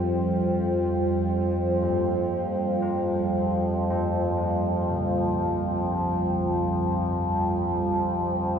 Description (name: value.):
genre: dark ambient drone.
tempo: free time.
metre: none.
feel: none.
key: unclear.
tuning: A4 = 440 Hz.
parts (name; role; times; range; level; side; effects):
dark analog pad; sustained chords; 0.0-8.6 s; G3 to G5; -27 LUFS; right 1 dB; chorus.
overtone-sweeping drone; drone; 0.0-8.6 s; F2 to F3; -25 LUFS; equal; chorus, built-in reverb.
quartz singing bowl; texture; 0.0-8.6 s; none; barely audible; none; none.
carillon bells; arpeggios; 1.8-8.6 s; Bb2 to F4; -36 LUFS; equal; diffuse ambient delay.
room: wet cathedral reverb, RT60 5.2 s.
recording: none.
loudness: -23 LUFS.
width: side -7 dB against mid.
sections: 0.0-8.6 A section.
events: none.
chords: 0.0 Fsus2.